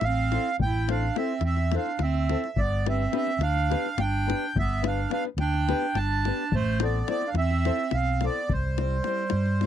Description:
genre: balkan folk, Balkan wedding band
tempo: 212 BPM (eighths)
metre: 7/8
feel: straight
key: unclear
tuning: A4 = 441 Hz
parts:
  - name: accordion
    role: melody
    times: 0.0-9.7 s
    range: C5 to A5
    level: -29 LUFS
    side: right 3 dB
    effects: none
  - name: clear clarinet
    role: second line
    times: 0.0-9.7 s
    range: G3 to E4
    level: -32 LUFS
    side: right 8 dB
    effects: none
  - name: fingered electric bass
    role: bass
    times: 0.0-9.7 s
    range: G1 to G2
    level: -26 LUFS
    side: equal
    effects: none
  - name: davul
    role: percussion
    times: 0.0-9.7 s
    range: none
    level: -31 LUFS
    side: left 5 dB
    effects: none
  - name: nylon-string guitar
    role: accompaniment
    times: 0.3-9.7 s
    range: B3 to C5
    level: -31 LUFS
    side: left 17 dB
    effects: none
room: light reverb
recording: dry, close 1970s-style studio recording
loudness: -24 LUFS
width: side -10 dB against mid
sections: 0.0-9.7 A section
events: none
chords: 0.0 Am; 2.6 G; 6.5 Am; 8.5 C

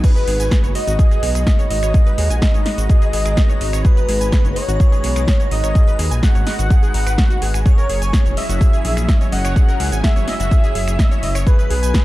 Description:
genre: progressive house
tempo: 126 BPM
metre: 4/4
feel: straight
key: G# minor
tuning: A4 = 441 Hz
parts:
  - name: warm velvety synth lead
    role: melody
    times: 0.0-12.0 s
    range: B4 to F#5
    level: -24 LUFS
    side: equal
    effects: chorus, sidechain pumping, digital delay
  - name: airy dreamy lead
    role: second line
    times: 0.0-12.0 s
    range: B4 to F#5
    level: -30 LUFS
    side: equal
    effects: chorus, sidechain pumping, digital delay
  - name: lush unison pad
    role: sustained chords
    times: 0.0-12.0 s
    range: F#3 to A#5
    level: -29 LUFS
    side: equal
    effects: chorus, phaser, sidechain pumping
  - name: wide unison pluck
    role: arpeggios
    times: 0.0-12.0 s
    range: D#4 to G#5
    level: -29 LUFS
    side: equal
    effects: sidechain pumping, digital delay
  - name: deep house drum kit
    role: drums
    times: 0.0-12.0 s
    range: cabasa, crash cymbal, finger snaps, hi-hat, snare drum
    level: -25 LUFS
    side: equal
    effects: overdrive
  - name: electronic kick drum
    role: drums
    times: 0.0-12.0 s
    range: none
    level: -14 LUFS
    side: equal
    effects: overdrive
  - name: dark detuned saw bass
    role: bass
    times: 0.3-11.9 s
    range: E1 to D#2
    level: -20 LUFS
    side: equal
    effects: sidechain pumping
room: digital ambience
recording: dark, warm production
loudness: -14 LUFS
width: side -17 dB against mid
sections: 0.0-12.0 A section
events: none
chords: 0.0 G#m7; 7.7 F#7; 11.5 B

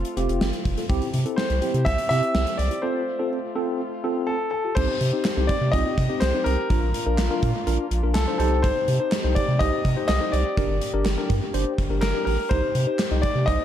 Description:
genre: synth-pop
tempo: 124 BPM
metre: 4/4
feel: straight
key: C dorian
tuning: A4 = 438 Hz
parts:
  - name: warm concert grand piano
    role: melody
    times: 0.0-13.6 s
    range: A4 to E5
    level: -26 LUFS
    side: left 1 dB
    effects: dub echo
  - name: mellow French horn section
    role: sustained chords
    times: 0.0-13.6 s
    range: C3 to G4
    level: -33 LUFS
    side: left 2 dB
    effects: none
  - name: round analog bass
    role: bass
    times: 0.0-13.6 s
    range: F1 to C3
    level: -24 LUFS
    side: equal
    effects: none
  - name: gated 80s drum kit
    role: drums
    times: 0.0-13.6 s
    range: crash cymbal, handclaps, hi-hat, kick drum, snare drum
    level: -26 LUFS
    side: equal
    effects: dub echo
  - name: tine electric piano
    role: accompaniment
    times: 0.2-13.6 s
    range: C4 to Eb5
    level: -28 LUFS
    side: equal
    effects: medium stereo tremolo
room: moderate plate reverb, RT60 1.5 s, studio reverb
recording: echo-heavy mix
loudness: -21 LUFS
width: side -10 dB against mid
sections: 0.0-4.8 A section; 4.8-13.6 B section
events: break 2.8-4.8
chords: 0.0 F; 0.9 C; 2.8 F; 4.8 Cm; 6.7 Bb; 8.4 Cm; 10.6 Gm; 12.5 Cm

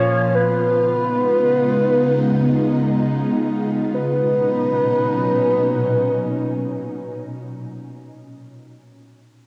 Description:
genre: dream pop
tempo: free time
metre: none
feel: none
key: B lydian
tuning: A4 = 440 Hz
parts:
  - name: soft octave-layered synth lead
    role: melody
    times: 0.0-7.2 s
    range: B4 to C#5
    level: -21 LUFS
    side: equal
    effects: chorus
  - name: ethereal airy pad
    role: sustained chords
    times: 0.0-7.2 s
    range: A#2 to E#4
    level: -23 LUFS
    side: equal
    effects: ensemble chorus, built-in reverb, cassette tape
  - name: electric guitar at the edge of break-up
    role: arpeggios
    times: 0.0-0.9 s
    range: E#3 to C#4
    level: -26 LUFS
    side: equal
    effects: analog chorus, cassette tape, analog delay
room: wet booth ambience, RT60 0.2 s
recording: home recording on cassette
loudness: -19 LUFS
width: mono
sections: 0.0-3.9 A section; 3.9-7.7 B section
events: slowing down 0.0-3.9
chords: 0.3 C#7; 3.9 Bmaj7

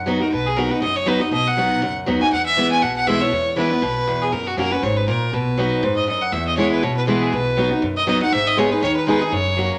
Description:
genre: bluegrass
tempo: 240 BPM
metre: 4/4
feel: swing 56% on 8ths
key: B major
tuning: A4 = 441 Hz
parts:
  - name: picked steel-string acoustic guitar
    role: accompaniment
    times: 0.0-9.8 s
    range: E2 to G#4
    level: -22 LUFS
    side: equal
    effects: none
  - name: upright bass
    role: bass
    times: 0.0-9.7 s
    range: F#1 to F#2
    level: -31 LUFS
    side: equal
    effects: none
  - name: clear fiddle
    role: melody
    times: 0.2-9.8 s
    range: F#4 to G#5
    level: -23 LUFS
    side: equal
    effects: none
room: moderate large studio reverb, RT60 1.1 s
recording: none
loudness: -19 LUFS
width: mono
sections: 0.0-6.3 A section; 6.3-9.8 B section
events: none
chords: 0.0 B; 2.3 E; 4.3 F#; 5.3 B; 6.3 E; 7.3 B; 8.3 G#m

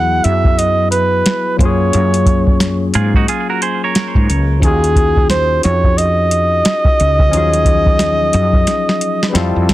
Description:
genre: R&B, neo-soul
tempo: 89 BPM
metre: 4/4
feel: swing 62% on 16ths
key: Eb minor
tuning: A4 = 440 Hz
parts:
  - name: mellow flugelhorn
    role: melody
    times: 0.0-9.7 s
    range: Ab4 to F#5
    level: -15 LUFS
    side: right 2 dB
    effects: plate reverb
  - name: barky tine electric piano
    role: accompaniment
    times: 0.0-9.7 s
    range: F3 to A4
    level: -20 LUFS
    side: left 6 dB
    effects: overdrive, plate reverb
  - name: woody fretless electric bass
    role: bass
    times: 0.0-9.7 s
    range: Db2 to Ab2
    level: -16 LUFS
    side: equal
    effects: none
  - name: soft vintage rhythm box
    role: drums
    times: 0.2-9.7 s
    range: hi-hat, kick drum, snare drum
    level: -14 LUFS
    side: equal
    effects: overdrive
  - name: semi-hollow electric guitar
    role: second line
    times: 3.0-4.6 s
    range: Eb4 to Db5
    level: -19 LUFS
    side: right 6 dB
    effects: plate reverb, tape echo
room: light reverb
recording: dense, heavily limited modern master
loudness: -11 LUFS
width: side -15 dB against mid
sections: 0.0-9.7 A section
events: drum fill 8.7-9.7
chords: 0.0 Eadd9; 1.6 Gbmaj9; 4.6 Ebm11

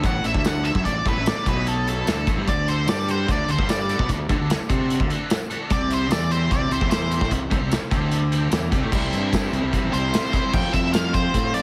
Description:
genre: indie rock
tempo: 149 BPM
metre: 4/4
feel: straight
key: unclear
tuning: A4 = 441 Hz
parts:
  - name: biting overdriven guitar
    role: riff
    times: 0.0-11.6 s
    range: A2 to F4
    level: -29 LUFS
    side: equal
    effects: none
  - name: scooped high-gain guitar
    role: riff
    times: 0.0-10.5 s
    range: C3 to A4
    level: -34 LUFS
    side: equal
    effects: distortion, ensemble chorus, analog delay
  - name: fuzz fingered electric bass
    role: bass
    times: 0.0-11.5 s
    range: A1 to C3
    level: -28 LUFS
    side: equal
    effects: overdrive
  - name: loose indie drum kit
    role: drums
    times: 0.0-11.6 s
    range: crash cymbal, hi-hat, kick drum, snare drum, tambourine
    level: -26 LUFS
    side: equal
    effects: none
  - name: octave-fuzz lead guitar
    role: melody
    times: 0.1-7.3, 9.9-11.6 s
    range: A4 to G5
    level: -29 LUFS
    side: equal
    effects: distortion, analog delay
room: light reverb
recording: heavily compressed radio sound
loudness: -22 LUFS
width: mono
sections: 0.0-8.9 A section; 8.9-10.5 B section; 10.5-11.6 C section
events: lead electric guitar solo 0.0-8.9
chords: 0.0 Am; 2.5 D7; 5.7 C5; 8.9 C; 10.5 F

